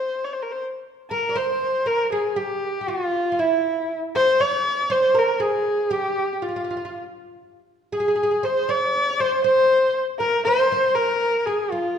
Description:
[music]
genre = persian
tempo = 79 BPM (dotted quarters)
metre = 6/8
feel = straight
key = F avaz esfahan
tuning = A4 = 440 Hz
[part]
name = warm kamancheh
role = melody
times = 0.0-12.0 s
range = E4 to D5-47c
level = -20 LUFS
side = left 1 dB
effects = none
[part]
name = oud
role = second line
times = 1.1-12.0 s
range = E4 to D5-50c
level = -26 LUFS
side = right 4 dB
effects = none
[sound]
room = wet recital hall reverb, RT60 1.6 s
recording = minimal, uncompressed stereo recording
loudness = -19 LUFS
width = side -8 dB against mid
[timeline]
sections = 0.0-1.1 A section; 1.1-12.0 B section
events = none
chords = none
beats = 0.35 | 1.11 1.87 | 2.63 3.38 | 4.14 4.90 | 5.66 6.42 | 7.17 7.93 | 8.69 9.45 | 10.20 10.96 | 11.72

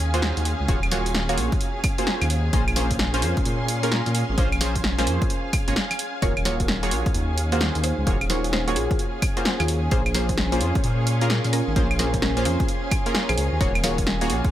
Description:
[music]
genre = UK garage, two-step garage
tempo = 130 BPM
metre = 4/4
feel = swing 64% on 16ths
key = Eb dorian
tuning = A4 = 440 Hz
[part]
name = soft string machine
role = sustained chords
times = 0.0-14.5 s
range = Db4 to C6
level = -33 LUFS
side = equal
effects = ensemble chorus, sidechain pumping
[part]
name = dark detuned saw bass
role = bass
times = 0.0-14.4 s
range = Eb1 to Bb2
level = -24 LUFS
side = equal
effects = none
[part]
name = warm studio string section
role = texture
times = 0.0-14.5 s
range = Db4 to Ab4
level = -33 LUFS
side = right 1 dB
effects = sidechain pumping
[part]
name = punchy chord stab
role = stabs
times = 0.1-14.5 s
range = Bb3 to Db5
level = -28 LUFS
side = right 1 dB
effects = chorus, cassette tape, tape echo
[part]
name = punchy analog drum machine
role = drums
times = 0.1-14.5 s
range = claves, hi-hat, snare drum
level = -26 LUFS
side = equal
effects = none
[part]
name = electronic kick drum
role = drums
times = 0.7-14.5 s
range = none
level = -25 LUFS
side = equal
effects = none
[part]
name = mallet-like synth pluck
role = melody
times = 6.2-14.0 s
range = Db4 to Db5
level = -30 LUFS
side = equal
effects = chorus, tape echo
[sound]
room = light reverb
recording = none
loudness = -20 LUFS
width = side -12 dB against mid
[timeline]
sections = 0.0-14.5 A section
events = none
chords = 0.0 Ebm11; 2.5 Bbm9; 6.2 Ebm11; 9.9 Bbm9; 13.6 Ebm11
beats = 0.22 | 0.69 1.15 1.61 2.07 | 2.53 2.99 3.45 3.92 | 4.38 4.84 5.30 5.76 | 6.22 6.68 7.15 7.61 | 8.07 8.53 8.99 9.45 | 9.92 10.38 10.84 11.30 | 11.76 12.22 12.69 13.15 | 13.61 14.07

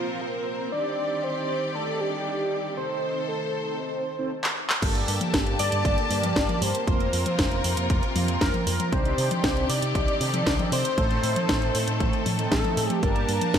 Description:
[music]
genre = italo disco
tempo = 117 BPM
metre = 4/4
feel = straight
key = G minor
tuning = A4 = 443 Hz
[part]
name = wide unison lead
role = melody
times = 0.0-13.6 s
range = F4 to D5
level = -29 LUFS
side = equal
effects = ping-pong delay
[part]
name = clear studio string section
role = sustained chords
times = 0.0-13.6 s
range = C3 to A5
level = -31 LUFS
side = left 2 dB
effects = none
[part]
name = mellow synth brass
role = stabs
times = 0.0-13.6 s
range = A3 to A5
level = -32 LUFS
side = right 3 dB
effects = chorus, cassette tape
[part]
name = house drum kit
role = drums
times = 4.4-13.6 s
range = crash cymbal, handclaps, hi-hat, snare drum, toms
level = -27 LUFS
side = equal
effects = overdrive
[part]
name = picked electric bass with an envelope filter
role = bass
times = 4.8-13.6 s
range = F1 to C3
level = -28 LUFS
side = equal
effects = none
[part]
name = electronic kick drum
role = drums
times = 4.8-13.6 s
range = none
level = -27 LUFS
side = equal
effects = overdrive
[sound]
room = moderate lush hall reverb, RT60 1.5 s, digital ambience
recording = bright 1980s-style digital production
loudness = -23 LUFS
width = side -8 dB against mid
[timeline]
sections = 0.0-4.8 A section; 4.8-13.6 B section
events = filter sweep on analog polysynth 0.0-4.8; drum fill 4.4-4.8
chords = 0.0 Fsus4; 0.7 Cmadd9; 2.8 Adim; 4.8 Gmadd9; 6.9 Fsus4; 8.9 Cmadd9; 11.0 Adim; 13.0 Gmadd9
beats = 0.21 | 0.72 1.23 1.75 2.26 | 2.77 3.29 3.80 4.31 | 4.82 5.34 5.85 6.36 | 6.88 7.39 7.90 8.41 | 8.93 9.44 9.95 10.46 | 10.98 11.49 12.00 12.52 | 13.03 13.54

